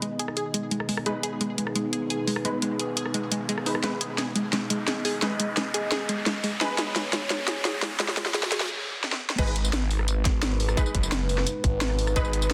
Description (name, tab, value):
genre	dark technical drum and bass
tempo	173 BPM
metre	4/4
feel	straight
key	G# minor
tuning	A4 = 440 Hz
part	dark analog pad	sustained chords	0.0-12.5 s	G#3 to D#5	-35 LUFS	equal	chorus, phaser, sidechain pumping
part	unison pluck	arpeggios	0.0-8.6 s	G#3 to G#4	-34 LUFS	equal	sidechain pumping, delay
part	drum and bass drum kit	drums	0.0-12.5 s	crash cymbal, hi-hat, rim click, snare drum, tambourine	-30 LUFS	equal	none
part	riser	sound effects	1.0-8.7 s	none	-38 LUFS	equal	none
part	orchestra-hit-like synth stab	stabs	1.1-6.7, 9.4-12.2 s	G#3 to B4	-36 LUFS	equal	built-in reverb, delay
part	phased detuned saw bass	bass	9.4-12.5 s	F#1 to G#1	-29 LUFS	equal	phaser, tube saturation
part	electronic kick drum	drums	9.4-12.2 s	none	-27 LUFS	equal	none
room	moderate plate reverb, RT60 2.4 s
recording	dense, heavily limited modern master, high-pass filter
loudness	-27 LUFS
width	mono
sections	0.0-9.4 A section; 9.4-12.5 B section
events	build-up 0.0-9.4; filter sweep on synth stab 0.0-9.4; filter sweep 0.0-9.4; riser 1.0-8.7; drum fill 3.8-8.7, 9.0-9.4; break 8.7-9.4; drop 9.4-12.5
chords	0.0 G#m